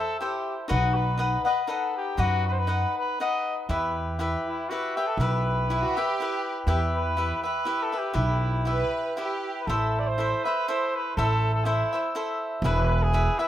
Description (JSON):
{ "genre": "mexican folk, mariachi", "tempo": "121 BPM", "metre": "3/4", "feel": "swing 54% on 8ths, rubato", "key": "E harmonic minor, A minor from 9.7 s", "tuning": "A4 = 440 Hz", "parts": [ { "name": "clear trumpet", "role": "melody", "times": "0.0-13.5 s", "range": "E4 to D#5", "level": "-29 LUFS", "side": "equal", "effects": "plate reverb, tape echo" }, { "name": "cavaquinho", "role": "accompaniment", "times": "0.0-13.5 s", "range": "D#4 to F#5", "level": "-28 LUFS", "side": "left 2 dB", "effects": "plate reverb" }, { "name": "upright bass", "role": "bass", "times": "0.7-13.3 s", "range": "E1 to F#2", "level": "-26 LUFS", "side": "right 1 dB", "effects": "none" }, { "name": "rich studio violin section", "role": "second line", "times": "5.7-9.7 s", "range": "E4 to B4", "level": "-31 LUFS", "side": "right 4 dB", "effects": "plate reverb" } ], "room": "moderate small room reverb, RT60 0.5 s", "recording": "rough home demo mix", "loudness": "-24 LUFS", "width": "side -12 dB against mid", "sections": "0.0-9.7 A section; 9.7-13.5 B section", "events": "none", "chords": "0.0 Am; 0.7 B; 3.7 Em; 9.7 Am; 12.6 E" }